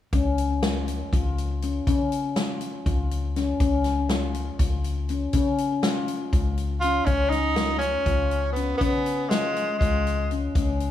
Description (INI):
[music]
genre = progressive instrumental, band music in an uneven meter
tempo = 242 BPM (eighths)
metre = 7/8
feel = straight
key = Db mixolydian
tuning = A4 = 445 Hz
[part]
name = handpan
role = arpeggios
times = 0.1-10.9 s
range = Db4 to F4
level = -28 LUFS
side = left 4 dB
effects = tape echo
[part]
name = woody fretless electric bass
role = bass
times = 0.1-10.9 s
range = Db2 to Db3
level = -27 LUFS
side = left 2 dB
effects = none
[part]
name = swinging big-band drum kit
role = drums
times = 0.1-10.9 s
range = hi-hat, kick drum, snare drum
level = -27 LUFS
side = left 1 dB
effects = none
[part]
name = edgy tenor saxophone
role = melody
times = 6.8-10.3 s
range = Ab3 to F4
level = -25 LUFS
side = right 1 dB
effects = tape echo
[sound]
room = light reverb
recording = small room ambience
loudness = -22 LUFS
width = side -11 dB against mid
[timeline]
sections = 0.1-7.1 A section; 7.1-10.9 B section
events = none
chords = 0.1 Db